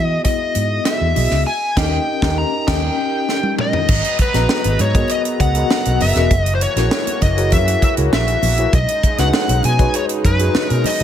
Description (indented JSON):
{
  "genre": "polished 1980s jazz-funk pop",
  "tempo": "99 BPM",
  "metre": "4/4",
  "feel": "straight",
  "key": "G# minor",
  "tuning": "A4 = 440 Hz",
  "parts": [
    { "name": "smooth overdriven lead guitar", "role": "melody", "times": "0.0-11.0 s", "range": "B4 to A#5", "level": "-20 LUFS", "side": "left 1 dB", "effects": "none" },
    { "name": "mellow tine electric piano", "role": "accompaniment", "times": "0.0-11.0 s", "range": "B3 to A#5", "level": "-22 LUFS", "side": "left 3 dB", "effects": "medium stereo tremolo, lush chorus" },
    { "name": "vintage muted fingered electric bass", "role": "bass", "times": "0.0-11.0 s", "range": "E1 to E3", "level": "-18 LUFS", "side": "equal", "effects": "none" },
    { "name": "tight funk drum kit", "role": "drums", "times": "0.2-11.0 s", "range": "crash cymbal, hi-hat, kick drum, snare drum, toms", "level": "-19 LUFS", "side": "right 1 dB", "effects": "gated reverb" },
    { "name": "congas", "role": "percussion", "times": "0.5-11.0 s", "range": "none", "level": "-30 LUFS", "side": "right 10 dB", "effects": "none" },
    { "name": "pipe organ, strings celeste", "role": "sustained chords", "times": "3.9-11.0 s", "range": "C#3 to A#5", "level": "-28 LUFS", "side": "left 1 dB", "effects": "none" }
  ],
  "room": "small room ambience",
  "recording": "none",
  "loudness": "-14 LUFS",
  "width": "side -10 dB against mid",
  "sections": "0.0-3.9 A section; 3.9-11.0 B section",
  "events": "band accent 1.5-3.9; drum fill 3.3-3.9",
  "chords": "0.0 Emaj7; 1.5 D#7; 3.9 G#m9; 6.3 F#7; 8.7 B69"
}